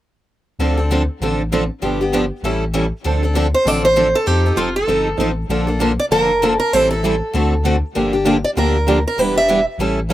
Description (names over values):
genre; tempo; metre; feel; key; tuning
acoustic string swing (jazz manouche); 196 BPM; 4/4; swing 58% on 8ths; D dorian, D minor from 3.0 s; A4 = 440 Hz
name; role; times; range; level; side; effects
picked steel-string acoustic guitar; accompaniment; 0.6-10.1 s; D3 to A4; -20 LUFS; left 3 dB; none
picked steel-string acoustic guitar; accompaniment; 0.6-10.1 s; D3 to B4; -22 LUFS; right 6 dB; slapback echo
warm sub bass; bass; 0.6-10.1 s; E1 to F2; -21 LUFS; left 1 dB; none
picked steel-string acoustic guitar; melody; 3.5-9.6 s; F4 to E5; -16 LUFS; right 1 dB; slapback echo
room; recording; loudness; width
little or no reverb; recorded outdoors, with no room sound; -15 LUFS; side -14 dB against mid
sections
0.6-3.0 A section; 3.0-10.1 B section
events
none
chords
0.6 Dm7; 1.8 G7; 2.4 A7; 3.0 Dm7; 4.3 F7; 5.5 Bbmaj7; 6.7 Am7; 7.3 D7; 7.9 Gm7; 9.2 Em7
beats
| 0.60 0.91 1.21 1.52 | 1.82 2.13 2.44 2.74 | 3.05 3.35 3.66 3.97 | 4.27 4.58 4.88 5.19 | 5.50 5.80 6.11 6.42 | 6.72 7.03 7.33 7.64 | 7.95 8.25 8.56 8.87 | 9.17 9.48 9.79 10.09